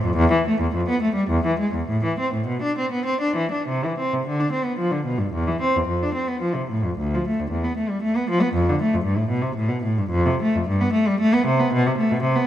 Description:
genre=classical, baroque-style suite movement for unaccompanied cello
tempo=94-118 BPM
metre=3/4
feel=rubato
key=A minor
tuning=A4 = 440 Hz
part: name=rich cello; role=solo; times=0.0-12.5 s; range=D2 to D4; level=-20 LUFS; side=equal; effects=none
room=moderate scoring stage reverb, RT60 1.7 s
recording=none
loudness=-20 LUFS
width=side -11 dB against mid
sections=0.0-3.7 A section; 3.7-12.5 A section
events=none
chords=none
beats=| 0.16 0.71 1.27 | 1.85 2.46 3.06 | 3.68 4.25 4.79 | 5.33 5.88 6.41 | 6.96 7.50 8.02 | 8.54 9.06 9.57 | 10.12 10.67 11.20 | 11.72 12.23

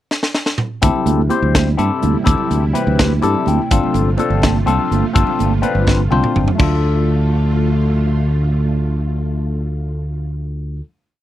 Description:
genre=electric jazz fusion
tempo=83 BPM (dotted quarters)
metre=6/8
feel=straight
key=D minor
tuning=A4 = 440 Hz
part: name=crisp fusion drum kit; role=drums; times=0.1-6.7 s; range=crash cymbal, hi-hat, kick drum, snare drum, toms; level=-17 LUFS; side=equal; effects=none
part: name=barky tine electric piano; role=accompaniment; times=0.8-10.8 s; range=A3 to G5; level=-20 LUFS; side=left 6 dB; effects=phaser
part: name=string machine, cellos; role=sustained chords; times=0.8-10.2 s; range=C3 to F4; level=-26 LUFS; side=right 2 dB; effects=ensemble chorus
part: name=fingered electric bass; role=bass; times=0.8-10.8 s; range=G1 to G2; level=-17 LUFS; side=equal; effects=none
part: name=congas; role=percussion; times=0.8-6.8 s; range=none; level=-23 LUFS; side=right 13 dB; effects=none
room=little or no reverb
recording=dry, close 1970s-style studio recording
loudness=-14 LUFS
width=side -13 dB against mid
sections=0.0-0.8 pickup bar; 0.8-6.6 groove; 6.6-9.5 final chord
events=drum fill 0.1-0.8, 5.9-6.6; tine electric piano fill 3.0-3.7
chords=0.0 N.C.; 0.8 D9sus4; 3.7 G9sus4; 6.6 Dm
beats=0.12 | 0.83 1.55 | 2.27 2.99 | 3.71 4.43 | 5.15 5.88 | 6.60 7.32 | 8.04 8.76

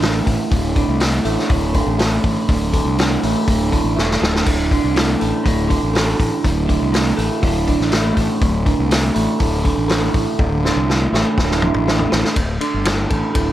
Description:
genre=psychedelic rock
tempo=122 BPM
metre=4/4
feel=straight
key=unclear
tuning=A4 = 440 Hz
part: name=electric guitar through a small old amp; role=riff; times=0.0-13.5 s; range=D2 to A3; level=-19 LUFS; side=right 2 dB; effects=phaser
part: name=fuzz fingered electric bass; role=bass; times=0.0-13.5 s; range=D1 to C2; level=-20 LUFS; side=equal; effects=overdrive
part: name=vintage drum kit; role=drums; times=0.0-13.5 s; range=hi-hat, kick drum, ride cymbal, snare drum, splash cymbal, toms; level=-19 LUFS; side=equal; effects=none
room=light reverb, studio ambience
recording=none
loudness=-15 LUFS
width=side -13 dB against mid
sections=0.0-12.4 A section; 12.4-13.5 B section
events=drum fill 4.0-4.5, 10.4-12.4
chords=0.0 D5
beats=0.02 | 0.52 1.01 1.50 2.00 | 2.49 2.98 3.48 3.97 | 4.46 4.96 5.45 5.94 | 6.44 6.93 7.42 7.92 | 8.41 8.90 9.40 9.89 | 10.39 10.88 11.38 11.87 | 12.36 12.86 13.35

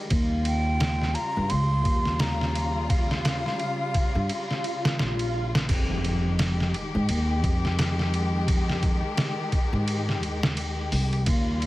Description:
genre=trip hop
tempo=86 BPM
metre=4/4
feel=swing 58% on 16ths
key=F minor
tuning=A4 = 437 Hz
part: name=warm studio string section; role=sustained chords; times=0.0-11.7 s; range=Db3 to G4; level=-32 LUFS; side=left 2 dB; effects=none
part: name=upright bass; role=bass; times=0.1-11.7 s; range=Bb1 to Ab2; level=-26 LUFS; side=equal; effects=tube saturation
part: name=trip hop sampler-style drum kit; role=drums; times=0.1-11.7 s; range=crash cymbal, hi-hat, kick drum, ride cymbal, snare drum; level=-27 LUFS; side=equal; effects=none
part: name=breathy hollow jazz flute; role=melody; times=0.5-5.0 s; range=F5 to C6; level=-32 LUFS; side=right 1 dB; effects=tape echo
part: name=swell and impact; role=sound effects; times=4.6-8.5 s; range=none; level=-33 LUFS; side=equal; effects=none
room=little or no reverb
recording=heavily compressed radio sound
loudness=-23 LUFS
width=side -17 dB against mid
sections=0.0-5.7 A section; 5.7-11.7 B section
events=kick drops out 4.3-5.7; swell 4.6-5.7; impact 5.7-8.5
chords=0.1 Eb9; 5.7 Fm9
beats=| 0.11 0.81 1.51 2.20 | 2.90 3.60 4.30 4.99 | 5.69 6.39 7.09 7.79 | 8.48 9.18 9.88 10.58 | 11.27

